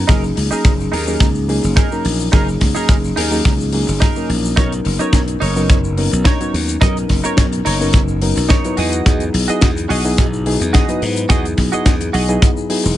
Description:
nu-disco, nu disco; 107 BPM; 4/4; straight; A4 = 441 Hz
bright reed electric piano; accompaniment; 0.0-13.0 s; Gb3 to Cb5; -20 LUFS; left 1 dB; low-pass filter, ping-pong delay
glassy slap bass; bass; 0.0-13.0 s; E1 to G#2; -19 LUFS; equal
direct-recorded clean electric guitar; riff; 0.1-12.9 s; Eb4 to Eb5; -23 LUFS; right 4 dB; analog chorus, low-pass filter, ping-pong delay
kick drum; drums; 0.1-12.5 s; -14 LUFS; equal
egg shaker; percussion; 0.1-13.0 s; -32 LUFS; left 4 dB
tight funk drum kit; drums; 0.4-13.0 s; hi-hat, snare drum; -25 LUFS; left 4 dB
little or no reverb; nothing above 10.5 kHz; -13 LUFS; side -13 dB against mid
0.0-13.0 A section
0.1 Gb69; 4.6 Cbmaj9; 8.8 Emaj9
| 0.09 0.65 1.21 1.77 | 2.33 2.89 3.45 4.01 | 4.58 5.14 5.70 6.26 | 6.82 7.38 7.94 8.50 | 9.06 9.62 10.18 10.74 | 11.30 11.86 12.43

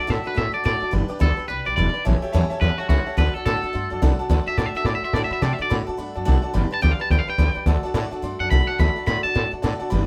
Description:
rock; 214 BPM; 4/4; swing 61% on 8ths; D major; A4 = 440 Hz
twangy electric guitar; melody; 0.0-9.5 s; F#4 to B5; -27 LUFS; equal
bright upright piano; accompaniment; 0.0-10.0 s; C#5 to D6; -34 LUFS; equal
picked swing-style acoustic guitar; accompaniment; 0.0-10.1 s; A2 to B4; -33 LUFS; equal
upright bass; bass; 0.1-10.0 s; E1 to C3; -23 LUFS; equal
light reverb; band playing live in one room; -22 LUFS; mono
0.0-4.3 A section; 4.3-10.1 A section
clean electric guitar solo 0.0-10.1
0.0 D; 0.9 G; 2.1 A7; 3.2 D; 6.5 G; 7.7 D
0.09 0.37 0.65 | 0.93 1.21 1.49 1.77 | 2.05 2.33 2.62 2.90 | 3.18 3.46 3.74 4.02 | 4.30 4.58 4.86 5.14 | 5.42 5.70 5.98 6.26 | 6.54 6.83 7.11 7.39 | 7.67 7.95 8.23 8.51 | 8.79 9.07 9.35 9.63 | 9.92

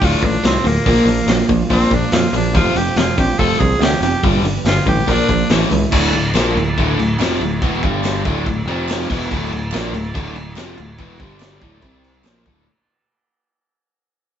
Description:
classic rock; 142 BPM; 4/4; straight; D minor; A4 = 439 Hz
raspy tenor saxophone; melody; 0.0-5.5 s; Bb3 to A4; -20 LUFS; equal
picked steel-string acoustic guitar; accompaniment; 0.0-5.9 s; F2 to G4; -23 LUFS; right 3 dB
overdriven electric guitar; riff; 0.0-12.7 s; D2 to C4; -20 LUFS; left 1 dB; spring reverb
picked electric bass; bass; 0.0-12.7 s; D1 to F2; -20 LUFS; equal
vintage drum kit; drums; 0.0-12.6 s; crash cymbal, hi-hat, kick drum, snare drum; -20 LUFS; equal
overdriven electric guitar; riff; 5.9-12.7 s; D2 to C4; -26 LUFS; equal
group handclap; percussion; 6.3-12.3 s; -35 LUFS; right 4 dB
moderate large studio reverb, RT60 0.9 s; band playing live in one room, nothing above 7.8 kHz; -14 LUFS; side -9 dB against mid
0.0-5.9 A section; 5.9-12.7 B section
tenor saxophone solo 0.0-5.9; fade-out 5.9-12.7
0.0 Dm; 0.9 Bb; 2.5 F; 4.2 G; 5.1 Bb; 5.5 A; 5.9 Dm; 7.8 G5; 8.2 D5; 8.7 F5; 9.1 Dm; 11.2 G5; 11.6 D5; 11.8 C5; 12.3 Dm
0.02 0.44 | 0.86 1.28 1.71 2.13 | 2.55 2.97 3.39 3.82 | 4.24 4.66 5.08 5.51 | 5.93 6.35 6.77 7.20 | 7.62 8.04 8.46 8.88 | 9.30 9.73 10.15 10.57 | 10.99 11.41 11.83 12.25

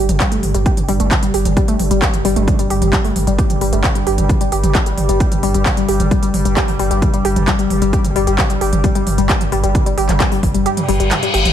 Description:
driving peak-time techno; 132 BPM; 4/4; straight; A4 = 437 Hz
warm sub bass; bass; 0.0-11.5 s; G1; -18 LUFS; equal; tube saturation, sidechain pumping, low-pass filter
analog drone; drone; 0.0-11.5 s; G2 to G3; -22 LUFS; equal; chorus, sidechain pumping
techno drum kit; drums; 0.1-11.5 s; handclaps, hi-hat, toms; -20 LUFS; right 1 dB; overdrive, studio reverb
warbly dusty pluck; riff; 0.2-11.4 s; G3 to G4; -20 LUFS; left 2 dB; chorus, sidechain pumping, digital delay
electronic kick drum; drums; 0.2-10.5 s; -17 LUFS; equal; overdrive, studio reverb
reverse cymbal; sound effects; 10.8-11.5 s; -18 LUFS; left 4 dB
light reverb; -13 LUFS; side -10 dB against mid
0.0-11.5 A section
kick drops out 10.7-11.5; reverse cymbal 10.8-11.5
0.0 G5
0.20 | 0.66 1.11 1.57 2.02 | 2.48 2.93 3.38 3.84 | 4.29 4.75 5.20 5.66 | 6.11 6.57 7.02 7.48 | 7.93 8.38 8.84 9.29 | 9.75 10.20 10.66 11.11

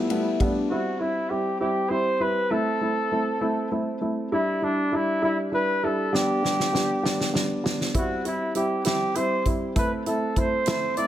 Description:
six-eight pop ballad; 66 BPM (dotted quarters); 6/8; straight; A4 = 438 Hz
warm French horn section; second line; 0.0-0.7 s; D4 to E4; -30 LUFS; left 5 dB; tape echo
dark upright piano; accompaniment; 0.0-11.1 s; G3 to E4; -26 LUFS; equal
natural country drum kit; drums; 0.1-0.5, 6.1-11.1 s; hi-hat, kick drum, ride cymbal, snare drum; -27 LUFS; equal
warm flugelhorn; melody; 0.7-11.1 s; D4 to D5; -26 LUFS; equal
light reverb, small room ambience; -22 LUFS; side -12 dB against mid
0.7-11.1 A section
drum fill 6.1-7.9
0.0 Gadd9; 0.7 C; 2.5 Am; 4.3 Em7/G; 6.1 G; 7.9 C; 9.8 Am
| 0.70 1.61 | 2.51 3.42 | 4.32 5.23 | 6.13 7.04 | 7.95 8.85 | 9.76 10.67

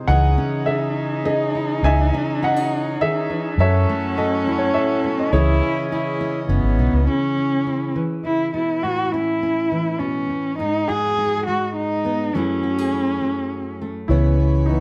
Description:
acoustic folk-pop ballad; 103 BPM; 3/4; straight; C# minor; A4 = 440 Hz
fingerpicked steel-string acoustic guitar; accompaniment; 0.0-14.8 s; F#2 to A4; -28 LUFS; equal
pedal harmonium; sustained chords; 0.0-7.1, 14.1-14.8 s; E3 to B5; -34 LUFS; equal
warm upright piano; melody; 0.1-6.8, 14.1-14.8 s; B3 to G#5; -25 LUFS; equal
warm cello; second line; 0.1-13.8 s; B3 to G#4; -25 LUFS; equal
vintage muted fingered electric bass; bass; 0.1-7.1, 14.1-14.8 s; F#1 to F#2; -19 LUFS; equal
light reverb; dark, warm production; -21 LUFS; mono
0.0-7.1 A section; 7.1-14.1 B section
cello solo 7.1-14.1
0.1 C#madd9; 3.6 F#m7; 5.3 C#madd9; 7.1 C#m7; 8.8 A; 10.6 G#m7; 12.3 F#m9; 14.1 C#m7
| 0.08 0.66 1.25 | 1.83 2.41 2.99 | 3.58 4.16 4.74 | 5.33 5.91 6.50 | 7.08 7.67 8.25 | 8.84 9.42 10.01 | 10.59 11.17 11.76 | 12.34 12.93 13.51 | 14.10 14.68

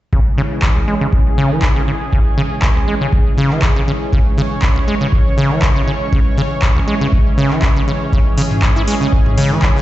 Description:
acid house; 120 BPM; 4/4; swing 54% on 16ths; C# minor; A4 = 439 Hz
lush unison pad; sustained chords; 0.1-9.8 s; E3 to C#5; -21 LUFS; right 1 dB; chorus, sidechain pumping
acid bass, saw; riff; 0.1-9.8 s; C#2 to E4; -18 LUFS; equal; tube saturation, vintage 12-bit sampler grit, sidechain pumping, tape echo
electronic kick drum; drums; 0.1-9.7 s; -15 LUFS; equal; overdrive
booming analog drum machine; drums; 0.6-9.7 s; handclaps, hi-hat, toms; -22 LUFS; equal; overdrive
light reverb; played on a big sound system in a bare room, large studio reverb, nothing above 8.0 kHz; -12 LUFS; side -15 dB against mid
0.1-9.8 A section
0.1 C#m
| 0.13 0.63 1.13 1.63 | 2.13 2.63 3.13 3.63 | 4.13 4.63 5.13 5.63 | 6.13 6.63 7.13 7.63 | 8.13 8.63 9.13 9.63

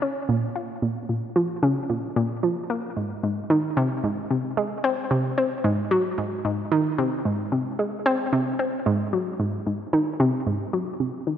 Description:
ambient; 112 BPM; 4/4; straight; A4 = 441 Hz
analog pluck; solo; 0.0-11.4 s; Ab2 to F4; -22 LUFS; equal; chorus, analog delay
wet lush hall reverb, RT60 2.9 s; -22 LUFS; side -9 dB against mid
0.0-11.4 A section
0.29 | 0.82 1.36 1.90 2.43 | 2.97 3.50 4.04 4.58 | 5.11 5.65 6.18 6.72 | 7.25 7.79 8.32 8.86 | 9.40 9.93 10.47 11.00

